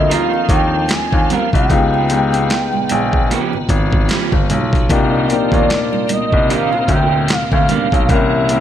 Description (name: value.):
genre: R&B, neo-soul.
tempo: 75 BPM.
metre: 4/4.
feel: swing 57% on 16ths.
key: unclear.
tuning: A4 = 439 Hz.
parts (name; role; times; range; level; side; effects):
gliding portamento lead; melody; 0.0-8.6 s; D5 to Ab5; -19 LUFS; right 2 dB; chorus.
warm upright piano; accompaniment; 0.0-8.6 s; D3 to Bb4; -21 LUFS; left 5 dB; none.
tonewheel organ; sustained chords; 0.0-8.6 s; Bb2 to F4; -25 LUFS; right 1 dB; slow rotary speaker, overdrive, chorus vibrato.
clear baby grand piano; bass; 0.0-8.6 s; G1 to Eb2; -18 LUFS; left 1 dB; none.
electric guitar through a small old amp; second line; 0.1-7.9 s; Eb3 to Bb4; -23 LUFS; right 7 dB; none.
warm horn section; stabs; 0.1-7.3 s; C3 to F4; -26 LUFS; right 3 dB; tape echo.
boom bap sampler-style drum kit; drums; 0.1-8.6 s; handclaps, hi-hat, kick drum, snare drum; -17 LUFS; equal; none.
congas; percussion; 0.1-7.9 s; none; -27 LUFS; right 9 dB; none.
room: light reverb, small room ambience.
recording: lossy compression artefacts.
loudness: -12 LUFS.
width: side -10 dB against mid.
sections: 0.0-8.6 A section.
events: none.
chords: 0.0 Eb69; 1.7 Db7#11; 4.9 Cm9; 8.1 C7b9.